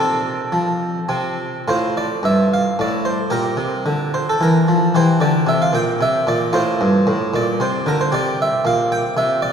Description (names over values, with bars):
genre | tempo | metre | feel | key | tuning
classical, baroque-style suite movement for harpsichord | 112 BPM | 3/4 | uneven beats, rubato | F major | A4 = 440 Hz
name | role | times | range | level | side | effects
harpsichord | solo | 0.0-9.5 s | G2 to G5 | -16 LUFS | equal | none
room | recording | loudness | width
wet cathedral reverb, RT60 4.6 s | heard from further back in the room | -16 LUFS | side -7 dB against mid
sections
0.0-1.7 A section; 1.7-9.5 A section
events
none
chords
0.0 F/C; 1.1 N.C.; 1.7 F; 3.3 Gm7/Bb; 4.9 C7; 6.5 F; 8.1 C5